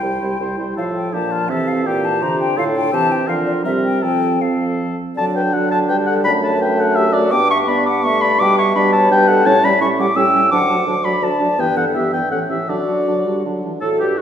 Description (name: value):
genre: quick classical-period movement for wind quintet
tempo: 155-174 BPM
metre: 3/4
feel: rubato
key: F major, D major from 5.2 s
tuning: A4 = 439 Hz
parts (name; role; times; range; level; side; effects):
- hollow concert flute; melody; 0.0-14.2 s; F#4 to Bb5; -22 LUFS; left 5 dB; none
- warm oboe; second line; 0.0-14.2 s; F4 to E6; -18 LUFS; left 1 dB; none
- warm French horn; accompaniment; 0.0-14.2 s; D3 to F#4; -23 LUFS; equal; none
- warm clarinet; accompaniment; 0.0-14.2 s; B3 to A4; -23 LUFS; right 4 dB; none
- warm bassoon; bass; 0.0-14.2 s; C2 to D3; -22 LUFS; right 2 dB; none
room: wet recital hall reverb, RT60 1.6 s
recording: recorded in a church or concert hall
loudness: -14 LUFS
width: side -9 dB against mid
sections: 0.0-5.2 A section; 5.2-13.8 B section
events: none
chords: 0.0 C; 0.8 F/A; 2.9 C; 3.3 Bb/D; 3.6 C7(no3); 4.0 F; 5.2 D; 6.3 D/F#; 7.3 G; 8.4 G/B; 9.5 A7; 10.5 D; 11.6 Em/G; 12.3 A; 12.7 D